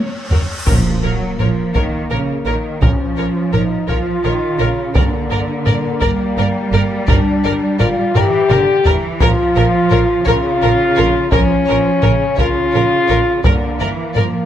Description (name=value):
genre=cinematic, epic orchestral film score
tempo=56 BPM (dotted quarters)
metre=6/8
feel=straight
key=Bb minor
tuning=A4 = 440 Hz
part: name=rich symphonic violin section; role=melody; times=0.0-14.2 s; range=C#5 to D5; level=-30 LUFS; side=left 3 dB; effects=none
part: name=cymbal swell and impact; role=sound effects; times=0.0-2.8 s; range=none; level=-25 LUFS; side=equal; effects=none
part: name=rich symphonic violin section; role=second line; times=0.3-14.2 s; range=A#4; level=-23 LUFS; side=left 3 dB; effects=none
part: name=rich symphonic viola section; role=accompaniment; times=0.3-14.2 s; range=F#4 to Bb4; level=-26 LUFS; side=right 1 dB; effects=none
part: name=rich symphonic cello section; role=bass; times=0.3-14.5 s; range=F#2 to G3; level=-21 LUFS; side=right 3 dB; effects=none
part: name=warm symphonic double bass section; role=bass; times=0.3-14.2 s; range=F#1 to Bb1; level=-21 LUFS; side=right 3 dB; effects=none
part: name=solo taiko drums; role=drums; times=0.3-14.5 s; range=none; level=-18 LUFS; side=equal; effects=none
part: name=mellow French horn section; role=sustained chords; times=0.7-14.5 s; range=Bb3 to G4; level=-17 LUFS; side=left 2 dB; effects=none
part: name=timpani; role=percussion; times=0.7-1.7 s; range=Bb2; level=-24 LUFS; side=left 1 dB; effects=none
room=light reverb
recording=close, detailed microphones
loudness=-13 LUFS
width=side -10 dB against mid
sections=0.7-14.5 A section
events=drum fill 0.0-0.7, 8.1-9.2; cymbal swell 0.0-0.7; impact 0.7-2.8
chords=0.0 F#5; 0.7 Bbm; 5.0 Gm; 9.2 Bbm; 13.4 Gm